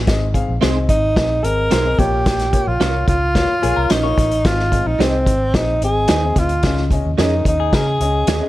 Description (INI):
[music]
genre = uptempo 1960s-style soul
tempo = 110 BPM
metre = 4/4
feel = straight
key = Ab major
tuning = A4 = 440 Hz
[part]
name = semi-hollow electric guitar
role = riff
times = 0.0-0.1, 3.3-8.5 s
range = F4 to Db5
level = -27 LUFS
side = left 11 dB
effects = none
[part]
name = vintage muted fingered electric bass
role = bass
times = 0.0-8.4 s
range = Ab1 to Db3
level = -20 LUFS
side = equal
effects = none
[part]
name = dark upright piano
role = accompaniment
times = 0.1-8.5 s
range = Ab2 to F5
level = -25 LUFS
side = left 5 dB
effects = none
[part]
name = vintage drum kit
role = drums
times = 0.1-8.4 s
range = hi-hat, kick drum, snare drum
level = -19 LUFS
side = equal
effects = none
[part]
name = direct-recorded clean electric guitar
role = stabs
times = 0.6-8.4 s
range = C4 to Eb5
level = -24 LUFS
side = right 7 dB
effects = ensemble chorus
[part]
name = breathy tenor saxophone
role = melody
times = 0.9-8.5 s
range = C4 to Bb4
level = -19 LUFS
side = right 1 dB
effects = none
[sound]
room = small room reverb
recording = none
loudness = -14 LUFS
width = side -16 dB against mid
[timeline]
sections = 0.1-8.5 A section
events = none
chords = 0.1 Ab; 2.0 Bbm; 4.5 Ab; 6.6 Dbsus2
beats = | 0.08 0.63 1.17 1.72 | 2.26 2.81 3.36 3.90 | 4.45 5.00 5.54 6.09 | 6.64 7.19 7.73 8.28